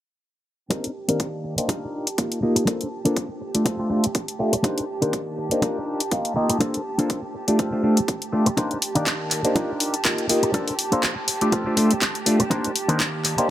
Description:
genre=filtered disco house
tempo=122 BPM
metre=4/4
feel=swing 55% on 16ths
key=C dorian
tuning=A4 = 440 Hz
part: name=clav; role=accompaniment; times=0.7-13.5 s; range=Eb3 to F5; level=-23 LUFS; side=equal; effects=phaser, vintage 12-bit sampler grit, sidechain pumping, low-pass filter
part: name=clear studio string section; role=sustained chords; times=0.7-13.5 s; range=G4 to A5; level=-32 LUFS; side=right 2 dB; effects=sidechain pumping, low-pass filter
part: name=electric guitar with an envelope filter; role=riff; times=0.7-13.3 s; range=C4 to D5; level=-27 LUFS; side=left 1 dB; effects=harmonic tremolo, sidechain pumping, low-pass filter
part: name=electronic kick drum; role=drums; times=0.7-13.1 s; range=none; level=-27 LUFS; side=right 1 dB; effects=high-pass filter on kick, high-pass filter on room
part: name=house drum kit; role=drums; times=0.7-13.5 s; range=handclaps, hi-hat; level=-24 LUFS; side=left 1 dB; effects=sidechain pumping on hats
room=light reverb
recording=none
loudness=-20 LUFS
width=side -12 dB against mid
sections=0.7-13.5 A section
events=filter sweep 0.7-13.5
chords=0.7 Cm9; 1.7 F13sus4; 2.7 Bbmaj9; 3.7 G9sus4; 4.6 Cm9; 5.6 F13sus4; 6.6 Bbmaj9; 7.6 G9sus4; 8.6 Cm9; 9.6 F13sus4; 10.5 Bbmaj9; 11.5 G9sus4; 12.5 Cm9

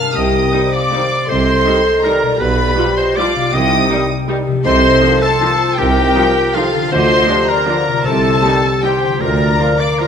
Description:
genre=classical, orchestral ballroom waltz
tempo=159 BPM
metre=3/4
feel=uneven beats, rubato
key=Bb major from 4.7 s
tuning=A4 = 440 Hz
part: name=rich chamber violin section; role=melody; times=0.0-10.1 s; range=F5 to F6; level=-21 LUFS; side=left 4 dB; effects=none
part: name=bright clarinet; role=second line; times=0.0-10.1 s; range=F4 to F5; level=-21 LUFS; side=left 1 dB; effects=none
part: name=bright oboe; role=second line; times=0.0-10.1 s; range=F4 to F5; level=-22 LUFS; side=right 2 dB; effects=none
part: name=small flute group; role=second line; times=0.0-10.1 s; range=A4 to A5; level=-22 LUFS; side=left 3 dB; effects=none
part: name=warm symphonic violin section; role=second line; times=0.0-10.1 s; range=F5 to F6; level=-22 LUFS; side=left 2 dB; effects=none
part: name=dark French horn section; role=sustained chords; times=0.0-10.1 s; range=Eb4 to C5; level=-20 LUFS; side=left 1 dB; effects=none
part: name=concert harp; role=arpeggios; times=0.0-10.1 s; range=B2 to C5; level=-22 LUFS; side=left 5 dB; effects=none
part: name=rich chamber double bass section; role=bass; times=0.2-9.5 s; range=B1 to D2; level=-22 LUFS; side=right 3 dB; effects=none
part: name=warm symphonic cello section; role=bass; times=0.2-9.5 s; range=D2 to D3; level=-22 LUFS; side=right 3 dB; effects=none
part: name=warm tuba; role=bass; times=0.2-9.5 s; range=B1 to D2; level=-24 LUFS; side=right 4 dB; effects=none
part: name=rich chamber viola section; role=accompaniment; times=0.5-10.1 s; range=F3 to F4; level=-24 LUFS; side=right 3 dB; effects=none
part: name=clear trombone section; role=sustained chords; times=0.5-10.1 s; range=D3 to Bb3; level=-26 LUFS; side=right 3 dB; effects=none
room=wet recital hall reverb, RT60 1.6 s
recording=none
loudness=-11 LUFS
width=side -7 dB against mid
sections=0.0-10.1 A section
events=none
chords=0.2 Cm; 2.4 G7/B; 3.5 Cm; 4.7 F7/C; 6.9 Bb/D; 8.1 Cm; 9.2 Bb/D

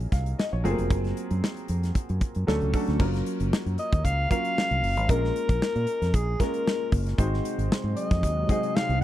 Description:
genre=polished 1980s jazz-funk pop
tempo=115 BPM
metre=4/4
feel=swing 54% on 16ths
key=unclear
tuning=A4 = 440 Hz
part: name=clear concert grand piano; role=accompaniment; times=0.0-9.0 s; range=Gb3 to F5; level=-30 LUFS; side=equal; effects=wide subtle chorus
part: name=fingered electric bass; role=bass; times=0.0-9.0 s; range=F1 to Bb2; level=-27 LUFS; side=equal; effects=none
part: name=modern studio drum kit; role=drums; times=0.0-9.0 s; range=crash cymbal, hi-hat, kick drum, snare drum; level=-26 LUFS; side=equal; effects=none
part: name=warm alto saxophone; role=melody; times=3.8-9.0 s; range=Ab4 to F5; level=-28 LUFS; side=left 2 dB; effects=slapback echo
part: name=soft string machine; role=sustained chords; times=7.5-9.0 s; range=C3 to Eb4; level=-33 LUFS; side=right 1 dB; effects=ensemble chorus
room=little or no reverb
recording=dry, close 1970s-style studio recording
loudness=-23 LUFS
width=side -13 dB against mid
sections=0.0-3.0 A section; 3.0-9.0 B section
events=none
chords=0.0 Ab9sus4; 0.6 Gbmaj9#11; 2.5 Dmaj7; 3.0 Gbmaj7; 5.1 Bbm7; 7.2 Ab7

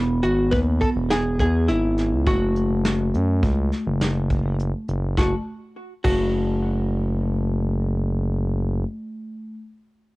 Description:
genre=progressive instrumental, band music in an uneven meter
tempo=103 BPM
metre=5/4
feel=straight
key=F# minor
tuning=A4 = 437 Hz
part: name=archtop guitar, miked and amplified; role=melody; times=0.0-9.5 s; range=E4 to B4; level=-26 LUFS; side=equal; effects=cassette tape, analog delay
part: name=vibraphone with medium mallets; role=second line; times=0.0-9.5 s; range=A3 to B3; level=-26 LUFS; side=equal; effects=auto-pan, cassette tape
part: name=smooth gliding synth bass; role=bass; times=0.0-8.8 s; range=E1 to F#2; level=-23 LUFS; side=equal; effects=none
part: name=soft brush drum kit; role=drums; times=0.2-6.2 s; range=crash cymbal, hi-hat, kick drum, snare drum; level=-25 LUFS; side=equal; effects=cassette tape
room=light reverb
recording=home recording on cassette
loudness=-20 LUFS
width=side -21 dB against mid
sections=0.0-5.2 A section; 5.2-8.1 B section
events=none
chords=0.0 Emaj7; 2.3 F#m

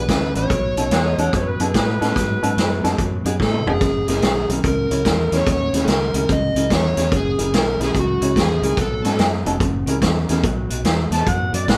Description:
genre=electric blues shuffle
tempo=145 BPM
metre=4/4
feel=swing 65% on 8ths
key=B mixolydian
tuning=A4 = 436 Hz
part: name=overdriven slide guitar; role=melody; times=0.0-9.2 s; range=F#4 to D#5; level=-25 LUFS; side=equal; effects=none
part: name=electric guitar through a small old amp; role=riff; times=0.0-11.8 s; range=E2 to G#3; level=-29 LUFS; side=equal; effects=none
part: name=fingered electric bass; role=bass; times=0.0-11.8 s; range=E1 to A2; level=-26 LUFS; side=equal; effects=none
part: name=vintage drum kit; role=drums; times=0.1-11.8 s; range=hi-hat, kick drum, snare drum, toms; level=-23 LUFS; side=equal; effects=none
part: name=warm upright piano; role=accompaniment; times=0.4-10.4 s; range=B3 to C#5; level=-28 LUFS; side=equal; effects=none
part: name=overdriven harmonica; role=second line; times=0.9-3.0, 11.1-11.8 s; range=G#4 to A5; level=-28 LUFS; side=equal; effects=none
room=light reverb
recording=band playing live in one room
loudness=-19 LUFS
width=mono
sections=0.0-10.4 A section; 10.4-11.8 B section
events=drum fill 3.4-3.8; harmonica solo 10.4-11.8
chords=0.0 E7sus2; 0.5 B9; 3.8 F#9; 8.8 B9; 9.6 F#9; 10.4 B5

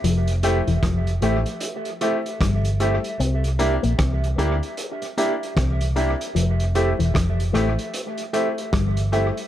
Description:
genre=lovers rock reggae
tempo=76 BPM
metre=4/4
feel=swing 61% on 16ths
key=unclear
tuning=A4 = 440 Hz
part: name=electric guitar with an envelope filter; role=riff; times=0.0-9.0 s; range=E3 to D4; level=-29 LUFS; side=left 5 dB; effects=dub echo
part: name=vintage muted fingered electric bass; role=bass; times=0.0-9.3 s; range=E1 to D2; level=-21 LUFS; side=equal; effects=none
part: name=vintage drum kit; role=drums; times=0.0-9.5 s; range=hi-hat, kick drum, rim click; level=-28 LUFS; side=equal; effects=dub echo
part: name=clear baby grand piano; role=accompaniment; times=0.4-9.3 s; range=A3 to G4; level=-26 LUFS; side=left 4 dB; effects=none
part: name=mellow electric guitar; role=stabs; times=0.4-9.3 s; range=G4 to E5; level=-27 LUFS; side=right 4 dB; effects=spring reverb, dub echo
room=small room ambience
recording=dark, warm production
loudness=-20 LUFS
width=side -12 dB against mid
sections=0.0-9.5 A section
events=none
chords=0.0 Fmaj9; 3.2 C7; 6.4 Fmaj9

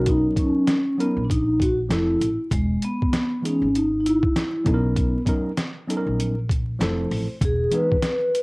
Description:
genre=hip hop, jazz-hop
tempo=98 BPM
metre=4/4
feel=swing 60% on 16ths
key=B major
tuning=A4 = 440 Hz
part: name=vibraphone with soft mallets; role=melody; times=0.0-8.4 s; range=G#3 to B4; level=-21 LUFS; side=equal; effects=none
part: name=mellow tine electric piano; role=accompaniment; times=0.0-8.0 s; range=E3 to C5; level=-26 LUFS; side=equal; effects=medium stereo tremolo, cassette tape
part: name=upright bass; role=bass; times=0.0-7.6 s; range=E1 to B1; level=-26 LUFS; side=equal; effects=none
part: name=boom bap sampler-style drum kit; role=drums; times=0.1-8.4 s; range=hi-hat, kick drum, snare drum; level=-25 LUFS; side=equal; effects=none
room=light reverb, small room ambience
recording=home recording on cassette, vinyl crackle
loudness=-20 LUFS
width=side -28 dB against mid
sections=0.0-7.4 A section; 7.4-8.4 A section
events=tine electric piano fill 6.5-7.4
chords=0.0 Bmaj9; 1.9 Fmaj7; 2.5 E; 4.7 Bmaj9; 6.8 Fmaj7; 7.4 Emaj7

